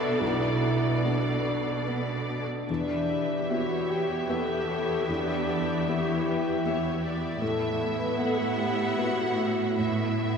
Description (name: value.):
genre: cinematic, emotional film score for orchestra.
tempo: 71-79 BPM.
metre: 3/4.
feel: rubato.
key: unclear.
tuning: A4 = 440 Hz.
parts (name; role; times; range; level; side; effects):
rich studio violin section; melody; 0.0-10.4 s; D5 to E5; -36 LUFS; left 2 dB; none.
warm studio violin section; second line; 0.0-10.4 s; B4 to F#5; -37 LUFS; left 1 dB; none.
felt-muted upright piano; accompaniment; 0.0-10.4 s; B1 to B4; -34 LUFS; equal; none.
warm studio viola section; accompaniment; 0.0-10.4 s; B3 to A4; -34 LUFS; right 2 dB; none.
mellow French horn section; sustained chords; 0.0-10.4 s; D4 to B4; -30 LUFS; left 1 dB; none.
concert harp; arpeggios; 0.0-10.4 s; A2 to G5; -35 LUFS; left 4 dB; none.
warm studio cello section; bass; 0.0-10.4 s; E2 to B2; -32 LUFS; right 3 dB; none.
room: wet church reverb, RT60 4.0 s.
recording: minimal, uncompressed stereo recording.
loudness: -25 LUFS.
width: side -6 dB against mid.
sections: 0.0-10.4 A section.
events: none.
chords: 0.0 Bm7; 2.7 Em7; 7.4 Asus2.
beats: | 0.21 1.05 1.87 | 2.69 3.49 4.29 | 5.09 5.88 6.65 | 7.41 8.18 8.97 | 9.79.